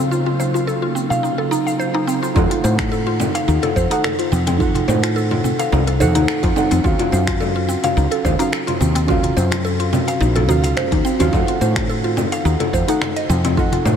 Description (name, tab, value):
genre	organic downtempo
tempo	107 BPM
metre	4/4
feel	swing 54% on 16ths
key	F phrygian dominant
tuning	A4 = 438 Hz
part	muted felt-like synth keys	accompaniment	0.0-14.0 s	Db4 to Gb5	-23 LUFS	right 3 dB	chorus, sidechain pumping, ping-pong delay
part	ethereal airy pad	sustained chords	0.0-2.3 s	Db3 to F5	-24 LUFS	right 1 dB	ensemble chorus, built-in reverb, phaser, sidechain pumping
part	mallet-like synth pluck	arpeggios	0.0-14.0 s	C4 to F5	-20 LUFS	left 1 dB	chorus, phaser, ping-pong delay
part	woody fretless electric bass	bass	0.0-14.0 s	Bb1 to A2	-19 LUFS	equal	sidechain pumping
part	deep house drum kit	drums	0.0-14.0 s	cabasa, congas, finger snaps, hi-hat	-24 LUFS	left 2 dB	none
part	darbuka	percussion	0.4-14.0 s	none	-30 LUFS	right 1 dB	none
part	electronic kick drum	drums	2.4-13.7 s	none	-22 LUFS	equal	none
room	moderate huge ambient reverb, RT60 7.1 s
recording	dreamy mix soaked in reverb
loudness	-15 LUFS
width	side -8 dB against mid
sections	0.0-2.4 A section; 2.4-14.0 B section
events	filter sweep on ambient pad 0.0-2.4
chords	0.0 Ebm9; 2.4 F7b9; 6.8 Ebm9; 11.3 F7b9